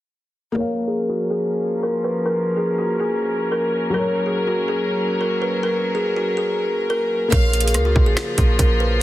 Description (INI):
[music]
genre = hip hop, trap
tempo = 142 BPM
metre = 4/4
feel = half-time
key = Bb minor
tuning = A4 = 440 Hz
[part]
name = felt-muted upright piano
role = accompaniment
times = 0.5-9.0 s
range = Gb3 to F5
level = -28 LUFS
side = left 3 dB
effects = low-pass filter
[part]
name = kalimba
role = melody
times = 0.6-9.0 s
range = Gb4 to Cb5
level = -21 LUFS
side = equal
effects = low-pass filter, digital delay
[part]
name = warm studio string section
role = sustained chords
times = 0.6-9.0 s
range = Db3 to Bb4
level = -26 LUFS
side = equal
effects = low-pass filter
[part]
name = clear studio violin section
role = second line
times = 7.3-7.7 s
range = F5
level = -29 LUFS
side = right 1 dB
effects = digital delay
[part]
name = clean 808-style bass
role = bass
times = 7.3-9.0 s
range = Bb1 to Db2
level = -19 LUFS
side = equal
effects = none
[part]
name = trap drum kit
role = drums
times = 7.3-8.7 s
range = finger snaps, hi-hat, kick drum, rim click, snare drum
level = -18 LUFS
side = equal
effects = soft clipping on snare
[sound]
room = light reverb, small room ambience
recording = dense, heavily limited modern master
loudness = -18 LUFS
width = side -15 dB against mid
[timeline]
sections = 0.6-7.3 A section; 7.3-9.0 B section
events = filter sweep 0.6-7.3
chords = 0.6 Bbm; 3.9 Gb; 7.3 Bbm